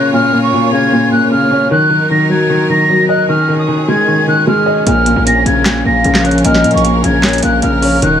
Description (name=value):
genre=hip hop, trap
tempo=152 BPM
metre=4/4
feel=half-time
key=Bb minor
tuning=A4 = 440 Hz
part: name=jazz flute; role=melody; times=0.0-8.2 s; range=Db6 to Bb6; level=-14 LUFS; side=right 1 dB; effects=low-pass filter
part: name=dark baby grand piano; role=accompaniment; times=0.0-8.2 s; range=Bb2 to Eb5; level=-13 LUFS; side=left 1 dB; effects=low-pass filter
part: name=bright symphonic string section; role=sustained chords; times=0.0-8.2 s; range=Eb3 to Db5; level=-19 LUFS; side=equal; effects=none
part: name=downlifter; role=sound effects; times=0.0-1.7 s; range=none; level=barely audible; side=none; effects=none
part: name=distorted 808-style bass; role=bass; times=4.9-8.2 s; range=Eb1 to Bb2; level=-16 LUFS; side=right 1 dB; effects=distortion
part: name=booming analog drum machine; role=drums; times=4.9-8.1 s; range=handclaps, hi-hat, snare drum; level=-16 LUFS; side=right 1 dB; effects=none
part: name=hollow clarinet-like synth lead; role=second line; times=5.7-8.0 s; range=Db5 to F5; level=-20 LUFS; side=left 4 dB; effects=chorus, tape echo
room=light reverb, small room ambience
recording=none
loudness=-9 LUFS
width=side -9 dB against mid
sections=0.0-8.2 A section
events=none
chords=0.0 Bbm; 1.7 Ebm; 3.3 Dbsus2; 4.9 Bbm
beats=| 0.13 0.52 0.92 1.31 | 1.71 2.10 2.50 2.89 | 3.29 3.68 4.08 4.47 | 4.87 5.26 5.66 6.05 | 6.45 6.84 7.23 7.63 | 8.02